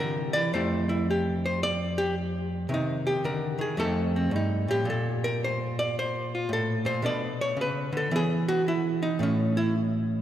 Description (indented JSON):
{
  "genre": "solo jazz",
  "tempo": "111 BPM",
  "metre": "4/4",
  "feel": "swing 67% on 8ths",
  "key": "F major",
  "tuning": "A4 = 444 Hz",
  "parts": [
    { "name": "archtop guitar, miked and amplified", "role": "solo", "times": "0.0-10.2 s", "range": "F2 to D5", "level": "-25 LUFS", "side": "equal", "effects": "none" }
  ],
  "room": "wet church reverb, RT60 3.6 s",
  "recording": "recorded in a church or concert hall",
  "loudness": "-25 LUFS",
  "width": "side -11 dB against mid",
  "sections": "0.5-10.2 A section",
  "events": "hollow-body jazz guitar solo 0.0-10.2",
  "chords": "0.0 Cadd9; 0.5 Fmaj9; 2.7 Cmadd9; 3.8 F9; 4.8 Bbmaj7sus2; 7.0 Bm9; 8.1 E5; 9.2 N.C."
}